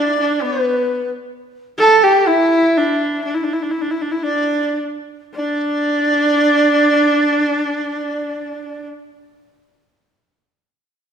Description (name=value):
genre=mongolian traditional, Mongolian folk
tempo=53-68 BPM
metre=4/4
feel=straight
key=D zhi mode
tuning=A4 = 440 Hz
part: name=clear horsehead fiddle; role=melody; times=0.0-8.9 s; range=B3 to A4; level=-17 LUFS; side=equal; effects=none
part: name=mellow large dizi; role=second line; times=0.0-8.9 s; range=B4 to A5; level=-18 LUFS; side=right 2 dB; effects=none
room=wet scoring stage reverb, RT60 1.5 s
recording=none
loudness=-14 LUFS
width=side -7 dB against mid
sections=0.0-5.3 A section; 5.3-9.8 B section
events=slowing down 0.0-5.3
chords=none